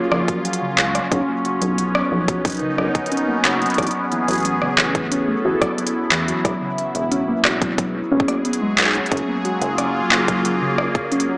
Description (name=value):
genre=IDM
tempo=90 BPM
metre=4/4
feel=straight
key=F# major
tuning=A4 = 440 Hz
part: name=phased analog pad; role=sustained chords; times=0.0-11.4 s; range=F#3 to A#4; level=-21 LUFS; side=equal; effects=phaser, chorus
part: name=deep acid bass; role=bass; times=0.0-10.9 s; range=E1 to E2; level=-25 LUFS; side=equal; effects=none
part: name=harp-like synth pluck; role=arpeggios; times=0.1-11.3 s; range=C#3 to F#4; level=-23 LUFS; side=equal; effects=chorus, analog delay
part: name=organic electronic drum kit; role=drums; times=0.1-11.3 s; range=handclaps, hi-hat, rim click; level=-21 LUFS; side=equal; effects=dub echo
part: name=electronic kick drum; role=drums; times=0.3-11.1 s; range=none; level=-23 LUFS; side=equal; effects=none
room=wet spring reverb, RT60 2.1 s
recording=echo-heavy mix, small speaker sound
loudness=-17 LUFS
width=side -27 dB against mid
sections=0.0-11.4 A section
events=none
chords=0.0 F#maj9; 1.1 Bmaj9; 3.8 Amaj9; 6.5 Eadd9; 9.1 F#maj9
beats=0.45 | 1.12 1.78 2.45 3.12 | 3.78 4.45 5.12 5.78 | 6.45 7.12 7.78 8.45 | 9.12 9.78 10.45 11.12